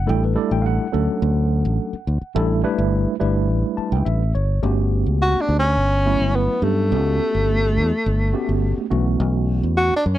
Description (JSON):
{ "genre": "jazz", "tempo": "105 BPM", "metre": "4/4", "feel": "straight", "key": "G lydian", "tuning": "A4 = 441 Hz", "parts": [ { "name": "tine electric piano", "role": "accompaniment", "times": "0.0-9.9 s", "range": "E3 to A5", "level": "-23 LUFS", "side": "right 1 dB", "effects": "overdrive, medium stereo tremolo" }, { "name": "fingered electric bass", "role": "bass", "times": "0.0-10.2 s", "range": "G1 to G2", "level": "-20 LUFS", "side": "equal", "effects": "none" }, { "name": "breathy tenor saxophone", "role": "melody", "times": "5.2-10.2 s", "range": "A3 to F#4", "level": "-20 LUFS", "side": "equal", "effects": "slapback echo" } ], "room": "little or no reverb", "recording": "dry, close 1970s-style studio recording", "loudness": "-17 LUFS", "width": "side -13 dB against mid", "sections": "0.0-4.6 A section; 4.6-10.2 B section", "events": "tine electric piano fill 3.5-4.6", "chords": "0.1 A7sus4; 0.9 Dmaj7; 2.4 A7sus4; 4.6 Gmaj9#11; 8.9 B9sus4", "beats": "| 0.07 0.64 1.21 1.78 | 2.35 2.92 3.49 4.06 | 4.63 5.20 5.77 6.34 | 6.92 7.49 8.06 8.63 | 9.20 9.77" }